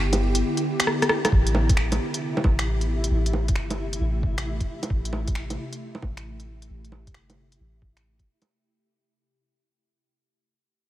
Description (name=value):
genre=future garage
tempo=134 BPM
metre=4/4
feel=swing 67% on 16ths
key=A minor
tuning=A4 = 440 Hz
part: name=ethereal airy pad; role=sustained chords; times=0.0-8.5 s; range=C3 to G4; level=-30 LUFS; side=left 1 dB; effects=ensemble chorus, built-in reverb, vintage 12-bit sampler grit, sidechain pumping
part: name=soft 808-style bass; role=bass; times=0.0-8.3 s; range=G1 to A1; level=-26 LUFS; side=equal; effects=sidechain pumping
part: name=flickering grainy texture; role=texture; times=0.0-8.5 s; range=E4 to G4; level=-37 LUFS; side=right 1 dB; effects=built-in reverb
part: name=organic electronic drum kit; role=drums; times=0.1-8.5 s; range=bongos, finger snaps, hi-hat, rim click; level=-26 LUFS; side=right 1 dB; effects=none
part: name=electronic kick drum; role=drums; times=1.3-8.2 s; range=none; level=-23 LUFS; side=equal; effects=none
room=digital ambience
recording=vinyl crackle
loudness=-22 LUFS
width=side -14 dB against mid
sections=0.0-1.3 A section; 1.3-8.5 B section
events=drum fill 0.9-1.3; band accent 1.2; fade-out 1.3-8.5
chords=0.0 Em7/G; 1.3 Am7